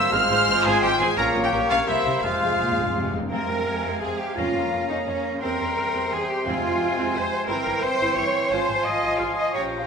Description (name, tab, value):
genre	classical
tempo	173 BPM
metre	3/4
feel	straight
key	F minor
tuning	A4 = 440 Hz
part	warm symphonic violin section	melody	0.0-9.9 s	E5 to F6	-30 LUFS	left 3 dB	none
part	clear oboe	second line	0.0-9.9 s	E4 to C6	-29 LUFS	right 1 dB	none
part	concert flute	second line	0.0-9.9 s	Db5 to F6	-30 LUFS	left 2 dB	none
part	warm clarinet	second line	0.0-9.9 s	C5 to Ab5	-33 LUFS	equal	none
part	warm symphonic violin section	second line	0.0-9.9 s	E5 to F6	-33 LUFS	left 2 dB	none
part	rich studio viola section	accompaniment	0.0-9.9 s	C4 to C5	-34 LUFS	right 1 dB	none
part	warm bassoon	accompaniment	0.0-9.9 s	C3 to Bb3	-30 LUFS	right 1 dB	none
part	mellow French horn section	sustained chords	0.0-9.9 s	E3 to G4	-31 LUFS	left 2 dB	none
part	clear trumpet	stabs	0.0-3.1 s	C5 to Db5	-29 LUFS	right 2 dB	none
part	rich symphonic cello section	bass	0.0-9.9 s	F2 to Eb5	-27 LUFS	right 1 dB	none
part	rich symphonic double bass section	bass	0.0-9.9 s	F1 to F2	-35 LUFS	right 2 dB	none
part	timpani	percussion	2.2-6.9 s	F2	-34 LUFS	equal	none
room	wet scoring stage reverb, RT60 1.7 s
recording	minimal, uncompressed stereo recording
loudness	-20 LUFS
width	side -6 dB against mid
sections	0.0-3.3 A section; 3.3-9.9 A section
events	timpani fill 2.2-3.3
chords	0.1 Fm/Ab; 1.2 Bbm; 1.5 Gdim/Bb; 1.9 C7; 2.2 Fm; 4.4 Bbm/F; 5.4 C7/E; 6.5 Fm; 7.5 C7/G; 8.5 Fm/Ab